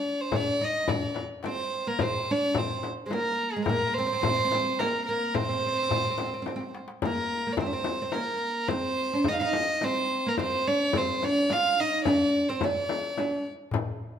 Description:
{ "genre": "Arabic maqam ensemble", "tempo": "107 BPM", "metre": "3/4", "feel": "straight", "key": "C maqam bayati", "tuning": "A4 = 441 Hz", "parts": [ { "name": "warm violin", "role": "melody", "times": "0.0-13.5 s", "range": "Ab4 to F5", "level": "-27 LUFS", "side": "right 1 dB", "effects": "none" }, { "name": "oud", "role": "second line", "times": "0.0-13.4 s", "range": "Ab3 to F4", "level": "-30 LUFS", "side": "right 1 dB", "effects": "none" }, { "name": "darbuka", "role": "percussion", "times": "0.3-7.0, 13.7-14.1 s", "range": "none", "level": "-35 LUFS", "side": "left 3 dB", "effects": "none" }, { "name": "frame drum", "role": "percussion", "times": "0.3-13.9 s", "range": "none", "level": "-32 LUFS", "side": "left 5 dB", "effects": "none" } ], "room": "wet large studio reverb, RT60 1.3 s", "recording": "band playing live in one room", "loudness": "-25 LUFS", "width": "side -8 dB against mid", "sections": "0.0-7.0 A section; 7.0-14.2 A section", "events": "drum fill 6.5-7.0", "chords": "none" }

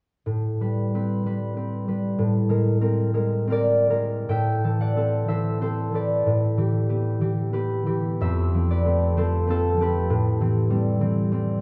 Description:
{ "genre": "classical, solo harp piece", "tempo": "68-101 BPM", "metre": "3/4", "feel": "rubato", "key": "A minor", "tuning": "A4 = 439 Hz", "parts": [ { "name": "concert harp", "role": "solo", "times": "0.3-11.6 s", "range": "F2 to G5", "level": "-23 LUFS", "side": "equal", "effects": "none" } ], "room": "wet scoring stage reverb, RT60 1.9 s", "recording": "none", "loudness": "-23 LUFS", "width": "mono", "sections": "0.3-4.3 A section; 4.3-11.6 B section", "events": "none", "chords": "0.3 Am9; 2.2 Bb9/A; 4.3 Am7; 6.3 Em7/A; 8.2 Fmaj7; 10.1 Am9" }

